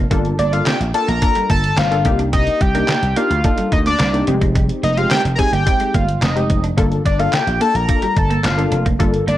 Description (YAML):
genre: early-eighties boogie funk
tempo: 108 BPM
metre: 4/4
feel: straight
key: G minor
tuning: A4 = 439 Hz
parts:
  - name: semi-hollow electric guitar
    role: riff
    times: 0.0-9.4 s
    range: G3 to D4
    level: -26 LUFS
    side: right 3 dB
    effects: analog chorus
  - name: vintage slap bass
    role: bass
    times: 0.0-9.4 s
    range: F1 to D2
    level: -19 LUFS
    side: equal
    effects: none
  - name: funky polysynth comp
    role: accompaniment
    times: 0.1-9.2 s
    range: G3 to A4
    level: -22 LUFS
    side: left 2 dB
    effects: chorus
  - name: detuned 8-bit digital drum machine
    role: drums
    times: 0.1-9.4 s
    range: handclaps, hi-hat, kick drum, snare drum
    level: -19 LUFS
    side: equal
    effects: none
  - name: fat analog lead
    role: melody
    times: 0.4-9.4 s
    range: D5 to Bb5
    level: -19 LUFS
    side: left 1 dB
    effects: chorus, phaser, slapback echo
room: light reverb, digital ambience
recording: dark, warm production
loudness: -14 LUFS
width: side -13 dB against mid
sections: 0.0-9.4 A section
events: none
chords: 0.0 Gm9; 2.1 Cm9; 4.3 Fm9; 6.8 Gm9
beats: | 0.11 0.66 1.22 1.77 | 2.33 2.89 3.44 4.00 | 4.55 5.11 5.66 6.22 | 6.78 7.33 7.89 8.44 | 9.00